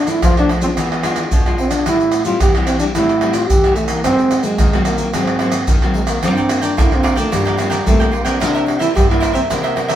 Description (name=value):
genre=samba and choro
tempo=110 BPM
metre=4/4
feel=straight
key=unclear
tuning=A4 = 439 Hz
part: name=dark trombone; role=melody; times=0.0-10.0 s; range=G3 to G4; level=-18 LUFS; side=right 1 dB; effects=none
part: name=nylon-string guitar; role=accompaniment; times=0.0-10.0 s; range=G2 to F4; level=-24 LUFS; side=left 2 dB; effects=none
part: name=nylon-string guitar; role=bass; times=0.0-10.0 s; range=G2 to G3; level=-24 LUFS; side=equal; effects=none
part: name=maracas, pandeiro, surdo and tamborim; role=percussion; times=0.1-10.0 s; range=none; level=-17 LUFS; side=equal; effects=none
part: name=cavaquinho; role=accompaniment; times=6.2-10.0 s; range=E4 to G5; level=-22 LUFS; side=right 2 dB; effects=none
room=moderate studio reverb, RT60 0.5 s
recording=band playing live in one room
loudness=-13 LUFS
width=side -11 dB against mid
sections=0.0-10.0 A section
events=none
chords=0.0 Bm7b5; 0.8 E7b9; 1.9 Am7; 4.1 Ab9; 6.2 Gm7; 8.4 C9